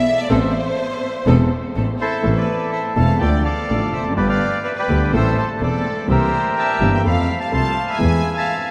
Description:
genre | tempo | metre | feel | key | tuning
tango | 125 BPM | 4/4 | rubato | A minor | A4 = 441 Hz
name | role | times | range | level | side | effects
rich studio violin section | second line | 0.0-8.7 s | A4 to A5 | -28 LUFS | equal | none
warm concert grand piano | accompaniment | 0.0-8.2 s | E1 to A4 | -23 LUFS | equal | none
rich symphonic string section | stabs | 0.0-2.0 s | B3 to A4 | -30 LUFS | equal | none
warm double bass | bass | 0.0-8.2 s | E1 to F2 | -23 LUFS | equal | none
bandoneon | melody | 2.0-8.7 s | E4 to C6 | -24 LUFS | equal | none
room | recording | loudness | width
wet cathedral reverb, RT60 6.6 s | in a vast, echoing space | -19 LUFS | mono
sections
0.0-2.2 A section; 2.2-8.7 B section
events
violin section solo 0.0-2.2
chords
0.3 Amadd9; 2.2 Am; 3.2 Dm; 4.2 G; 5.1 Am; 6.1 C7; 7.1 F; 8.0 E

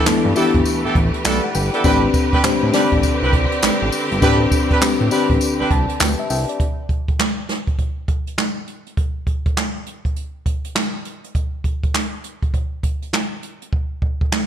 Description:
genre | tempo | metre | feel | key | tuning
R&B, new jack swing | 101 BPM | 4/4 | swing 63% on 16ths | A minor | A4 = 438 Hz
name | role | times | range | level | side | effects
mellow FM electric piano | accompaniment | 0.0-6.8 s | B3 to A5 | -19 LUFS | left 5 dB | chorus
bright studio string section | sustained chords | 0.0-6.6 s | D3 to B4 | -24 LUFS | right 2 dB | none
clear horn section | stabs | 0.0-5.7 s | B3 to B4 | -23 LUFS | right 3 dB | ping-pong delay
fat analog bass | bass | 0.1-6.5 s | G1 to A2 | -21 LUFS | right 1 dB | none
jazz brush drum kit | drums | 0.1-14.5 s | handclaps, hi-hat, kick drum, snare drum, tambourine | -19 LUFS | right 1 dB | none
room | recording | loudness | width
light reverb, studio reverb | bright 1980s-style digital production | -17 LUFS | side -9 dB against mid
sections
0.0-6.6 A section; 6.6-14.5 B section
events
FM electric piano fill 5.4-6.6; hi-hats muted 13.7-14.5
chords
0.0 G69; 1.8 Am11; 6.6 N.C.

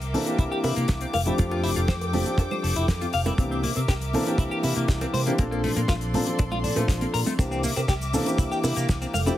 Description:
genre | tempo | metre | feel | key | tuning
nu-disco, nu disco | 120 BPM | 4/4 | straight | C mixolydian | A4 = 439 Hz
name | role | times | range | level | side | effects
warm chamber string section | sustained chords | 0.0-9.4 s | A4 to D6 | -34 LUFS | left 2 dB | sidechain pumping
fingered electric bass with an envelope filter | bass | 0.0-9.3 s | F1 to C3 | -28 LUFS | equal | sidechain pumping
damped 70s drum kit | drums | 0.0-9.4 s | cabasa, hi-hat, snare drum | -32 LUFS | left 2 dB | small room ambience
cabasa, congas and bongos | percussion | 0.0-9.4 s | none | -33 LUFS | right 2 dB | none
dark grand piano | accompaniment | 0.1-9.4 s | E3 to A4 | -28 LUFS | equal | sidechain pumping, ping-pong delay
clean electric guitar | riff | 0.4-9.3 s | A3 to F5 | -30 LUFS | left 3 dB | wide subtle chorus, ping-pong delay
kick drum | drums | 0.4-9.0 s | none | -23 LUFS | equal | small room ambience
room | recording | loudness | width
light reverb | heavily compressed radio sound | -22 LUFS | side -13 dB against mid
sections
0.0-9.4 A section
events
none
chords
0.0 C9; 1.1 F69; 3.4 C9; 5.4 Bbmaj9; 7.4 C9

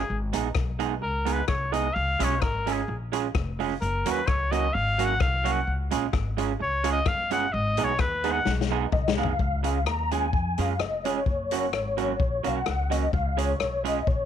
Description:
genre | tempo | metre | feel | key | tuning
ska | 129 BPM | 4/4 | straight | Db mixolydian | A4 = 440 Hz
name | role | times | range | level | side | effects
clear trumpet | melody | 0.0-8.5 s | Ab4 to Gb5 | -27 LUFS | left 2 dB | none
upright bass | bass | 0.0-14.3 s | F1 to Gb2 | -29 LUFS | left 1 dB | none
electric guitar through a small old amp | accompaniment | 0.3-14.0 s | Gb3 to Ab4 | -30 LUFS | right 12 dB | none
vintage drum kit | drums | 0.3-14.2 s | hi-hat, kick drum, rim click, snare drum, toms | -29 LUFS | left 4 dB | none
mellow tonewheel organ | melody | 8.9-14.3 s | Db5 to Bb5 | -28 LUFS | left 3 dB | chorus vibrato, stopped rotary speaker
room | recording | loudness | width
studio reverb | 1960s-style stereo | -24 LUFS | side -9 dB against mid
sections
0.0-9.4 A section; 9.4-14.3 B section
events
trumpet solo 0.0-9.4; drum fill 8.5-9.4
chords
0.1 Abm; 2.0 Db; 3.8 Gb; 5.7 Db; 7.5 Abm; 9.4 Db; 11.3 Gb; 13.1 Db

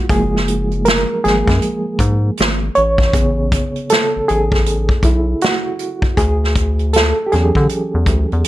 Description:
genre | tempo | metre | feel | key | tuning
R&B, neo-soul | 79 BPM | 4/4 | swing 62% on 16ths | unclear | A4 = 441 Hz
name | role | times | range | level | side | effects
reed electric piano | accompaniment | 0.0-8.5 s | C#3 to C#5 | -17 LUFS | right 1 dB | fast tremolo
rubbery square bass | bass | 0.1-8.4 s | F#1 to D3 | -17 LUFS | equal | none
unplugged drum kit | drums | 0.1-8.5 s | hi-hat, kick drum, snare drum | -17 LUFS | equal | none
room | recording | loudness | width
little or no reverb | none | -13 LUFS | side -14 dB against mid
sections
0.0-8.5 A section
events
reed electric piano solo 0.0-8.5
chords
0.0 F#maj9; 2.8 Amaj9; 6.2 Dmaj9

